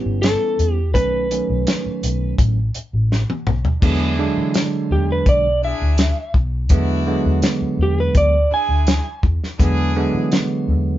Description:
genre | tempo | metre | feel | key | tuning
straight-eighth soul blues | 83 BPM | 4/4 | straight | E mixolydian | A4 = 440 Hz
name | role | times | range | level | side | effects
clean lap steel guitar | melody | 0.0-9.2 s | G4 to G#5 | -20 LUFS | right 1 dB | none
bell-like tine electric piano | accompaniment | 0.0-11.0 s | D3 to D4 | -21 LUFS | right 3 dB | none
vintage muted fingered electric bass | bass | 0.1-11.0 s | G1 to E3 | -20 LUFS | equal | none
warm soul drum kit | drums | 0.2-10.5 s | crash cymbal, hi-hat, kick drum, snare drum, toms | -18 LUFS | equal | none
bright horn section | sustained chords | 3.8-10.3 s | D4 to G#4 | -28 LUFS | left 3 dB | none
room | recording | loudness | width
moderate studio ambience, RT60 0.5 s | band playing live in one room, nothing above 7.5 kHz | -16 LUFS | side -13 dB against mid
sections
0.0-3.8 A section; 3.8-11.0 B section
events
drum fill 3.1-3.8; electric slide guitar solo 3.8-11.0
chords
0.0 A7; 0.9 B7; 3.8 E7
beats
0.23 | 0.95 1.67 2.39 3.11 | 3.83 4.55 5.27 5.99 | 6.71 7.43 8.15 8.87 | 9.59 10.31

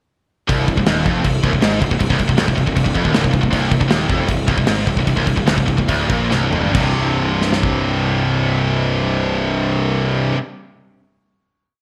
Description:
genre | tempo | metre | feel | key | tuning
heavy metal | 135-158 BPM | 4/4 | straight | C minor | A4 = 439 Hz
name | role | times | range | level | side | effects
heavy high-gain guitar | riff | 0.5-10.4 s | C2 to C3 | -24 LUFS | equal | distortion
sludgy distorted guitar | riff | 0.5-10.4 s | C2 to C3 | -24 LUFS | equal | overdrive
tight distorted guitar | riff | 0.5-10.4 s | C2 to C3 | -25 LUFS | equal | distortion
fuzz picked electric bass | bass | 0.5-10.3 s | C1 to Bb1 | -24 LUFS | equal | overdrive
modern studio drum kit | drums | 0.5-7.7 s | crash cymbal, kick drum, snare drum, toms | -22 LUFS | equal | gated reverb
room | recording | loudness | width
moderate plate reverb, RT60 1.2 s, studio reverb | bright 1980s-style digital production | -17 LUFS | mono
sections
0.5-6.7 riff; 6.7-10.3 final chord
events
slowing down 3.5-6.7; drum fill 6.3-6.7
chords
0.5 Cm; 6.7 C5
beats
| 0.49 0.87 1.25 1.63 | 2.01 2.39 2.77 3.15 | 3.53 3.91 4.29 4.68 | 5.07 5.47 5.89 6.31 | 6.75 7.19 7.63 8.08 | 8.52 8.96 9.40 9.85

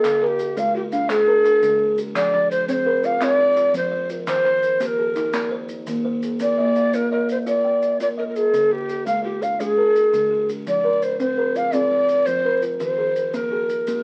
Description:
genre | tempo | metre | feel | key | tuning
southern african traditional, mbira-style interlocking cycle | 113 BPM (dotted quarters) | 12/8 | straight | Bb equiheptatonic | A4 = 444 Hz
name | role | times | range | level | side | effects
breathy mellow Native American-style cedar flute | melody | 0.0-14.0 s | G4-42c to F5 | -21 LUFS | equal | none
buzzing kalimba | arpeggios | 0.0-14.0 s | Db3+43c to G5-43c | -29 LUFS | equal | none
kalimba | arpeggios | 0.0-14.0 s | Db3+43c to F5 | -31 LUFS | equal | none
group handclap | percussion | 0.0-5.5 s | none | -33 LUFS | equal | none
maracas | percussion | 0.0-14.0 s | none | -46 LUFS | equal | none
room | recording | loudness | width
moderate studio reverb, RT60 0.8 s | very old 78 rpm record, vinyl crackle, nothing above 10.8 kHz | -20 LUFS | mono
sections
0.0-6.4 A section; 6.4-14.0 A section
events
none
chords
0.0 Db; 2.2 Fm; 4.3 Eb; 6.4 Bbm; 8.5 Db; 10.7 Fm; 12.8 Eb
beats
| 0.04 0.57 1.10 1.63 | 2.16 2.69 3.22 3.75 | 4.28 4.81 5.34 5.87 | 6.40 6.93 7.47 8.00 | 8.53 9.07 9.60 10.13 | 10.67 11.20 11.74 12.27 | 12.81 13.34 13.88

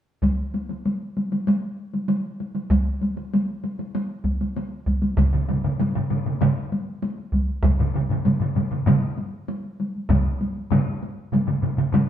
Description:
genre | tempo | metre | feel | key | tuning
japanese traditional, taiko drum ensemble | 97 BPM | 4/4 | straight | none | none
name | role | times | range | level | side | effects
solo taiko drums | percussion | 0.2-10.2 s | none | -23 LUFS | right 1 dB | none
taiko ensemble | percussion | 0.2-12.1 s | none | -25 LUFS | left 1 dB | none
taiko ensemble | percussion | 5.2-12.1 s | none | -27 LUFS | left 4 dB | none
taiko ensemble | percussion | 5.2-12.1 s | none | -23 LUFS | right 3 dB | none
room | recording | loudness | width
wet stone room reverb, RT60 1.2 s | band playing live in one room | -21 LUFS | side -10 dB against mid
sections
0.2-5.2 A section; 5.2-12.1 B section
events
none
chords
none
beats
| 0.23 0.85 1.47 2.09 | 2.70 3.32 3.94 4.56 | 5.17 5.79 6.41 7.02 | 7.64 8.25 8.87 9.48 | 10.09 10.70 11.32 11.93

